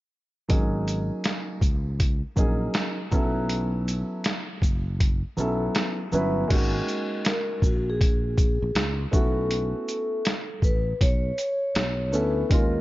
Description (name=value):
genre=hip hop, jazz-hop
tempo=80 BPM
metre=4/4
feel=swing 66% on 16ths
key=unclear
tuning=A4 = 440 Hz
part: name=dark concert grand piano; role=accompaniment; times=0.5-12.8 s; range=F#3 to B4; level=-27 LUFS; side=equal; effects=none
part: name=sustaining fretless electric bass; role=bass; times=0.5-12.8 s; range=F#1 to D#2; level=-28 LUFS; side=equal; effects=none
part: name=boom bap sampler-style drum kit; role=drums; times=0.5-12.7 s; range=crash cymbal, hi-hat, kick drum, shaker, snare drum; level=-24 LUFS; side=equal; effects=vintage 12-bit sampler grit
part: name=vibraphone with soft mallets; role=melody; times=7.3-12.8 s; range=F#4 to C#5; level=-28 LUFS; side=left 1 dB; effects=analog delay
room=light reverb, digital ambience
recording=dark, warm production, nothing above 7.5 kHz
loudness=-22 LUFS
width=side -17 dB against mid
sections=0.5-6.5 A section; 6.5-12.8 B section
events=none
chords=0.5 G#9sus4; 3.1 B9sus4; 6.5 G#9sus4; 9.1 B9sus4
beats=| 0.50 1.25 2.00 2.75 | 3.50 4.25 5.00 5.75 | 6.50 7.25 8.00 8.75 | 9.50 10.25 11.00 11.75 | 12.50